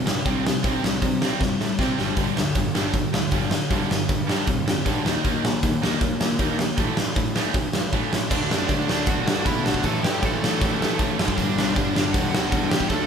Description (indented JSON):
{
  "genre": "punk rock",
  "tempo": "156 BPM",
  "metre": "4/4",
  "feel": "straight",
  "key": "unclear",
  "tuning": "A4 = 439 Hz",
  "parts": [
    { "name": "overdriven semi-hollow guitar", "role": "riff", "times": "0.0-13.1 s", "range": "G2 to Eb4", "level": "-28 LUFS", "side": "left 8 dB", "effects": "none" },
    { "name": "tight distorted guitar", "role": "riff", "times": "0.0-13.1 s", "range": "G2 to Eb4", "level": "-28 LUFS", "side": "right 9 dB", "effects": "distortion" },
    { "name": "fuzz picked electric bass", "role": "bass", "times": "0.1-13.1 s", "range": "E1 to C3", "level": "-30 LUFS", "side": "equal", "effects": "overdrive" },
    { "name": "big rock drum kit", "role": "drums", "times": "0.1-13.0 s", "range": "crash cymbal, hi-hat, kick drum, snare drum", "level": "-23 LUFS", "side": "equal", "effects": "none" },
    { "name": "high-gain lead guitar", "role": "melody", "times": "8.3-13.1 s", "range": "D4 to A5", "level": "-29 LUFS", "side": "right 1 dB", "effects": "distortion" },
    { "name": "fuzz guitar", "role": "riff", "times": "8.3-13.1 s", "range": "G2 to D4", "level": "-31 LUFS", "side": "equal", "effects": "none" }
  ],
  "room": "light reverb",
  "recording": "band playing live in one room",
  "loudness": "-20 LUFS",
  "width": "side -7 dB against mid",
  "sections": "0.0-8.3 A section; 8.3-13.1 B section",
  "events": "drum fill 1.4-2.2",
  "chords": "0.0 C5; 2.0 G5; 5.1 Eb5; 6.8 A5; 8.3 D; 9.8 A5; 11.2 G"
}